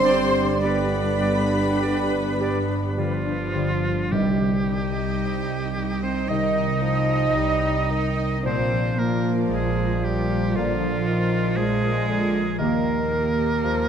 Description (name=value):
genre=classical, slow romantic movement for symphony orchestra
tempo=50-59 BPM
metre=4/4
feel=rubato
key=C minor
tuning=A4 = 442 Hz
part: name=warm symphonic violin section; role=melody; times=0.0-13.9 s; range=D5 to C6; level=-35 LUFS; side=left 2 dB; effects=none
part: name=bright oboe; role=second line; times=0.0-13.9 s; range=F4 to Eb5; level=-30 LUFS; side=right 2 dB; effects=none
part: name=bright small flute group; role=second line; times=0.0-3.6 s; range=B4 to C5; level=-30 LUFS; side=equal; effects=none
part: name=dark clarinet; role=second line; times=0.0-13.9 s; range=F4 to Eb5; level=-33 LUFS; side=left 1 dB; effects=none
part: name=warm symphonic violin section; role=second line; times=0.0-13.9 s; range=Bb4 to Eb5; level=-35 LUFS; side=left 2 dB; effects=none
part: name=dark symphonic viola section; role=accompaniment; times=0.0-13.9 s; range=G3 to G4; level=-32 LUFS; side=right 2 dB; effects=none
part: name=mellow bassoon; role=accompaniment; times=0.0-13.9 s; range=D3 to G3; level=-31 LUFS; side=right 2 dB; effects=none
part: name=mellow French horn section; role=sustained chords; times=0.0-13.0 s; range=D4 to Eb5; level=-33 LUFS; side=left 2 dB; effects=none
part: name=warm trombone section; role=sustained chords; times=0.0-13.0 s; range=Bb2 to Bb3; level=-33 LUFS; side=right 5 dB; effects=none
part: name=concert harp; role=arpeggios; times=0.0-13.9 s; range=G2 to D6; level=-29 LUFS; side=left 9 dB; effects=none
part: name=mellow trumpet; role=stabs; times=0.0-3.7 s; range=D5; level=-30 LUFS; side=right 3 dB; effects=none
part: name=rich symphonic double bass section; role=bass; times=0.0-13.9 s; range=G1 to Eb2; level=-27 LUFS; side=right 3 dB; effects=none
part: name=warm symphonic cello section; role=bass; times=0.0-13.9 s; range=F3 to Eb4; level=-26 LUFS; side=right 3 dB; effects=none
part: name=timpani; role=percussion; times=4.1-5.7 s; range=C3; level=-30 LUFS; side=right 1 dB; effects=none
room=wet scoring stage reverb, RT60 1.7 s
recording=none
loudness=-20 LUFS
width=side -8 dB against mid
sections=0.0-4.1 A section; 4.1-13.9 B section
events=none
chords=0.0 G; 4.1 Cm; 8.4 Bb; 12.6 Eb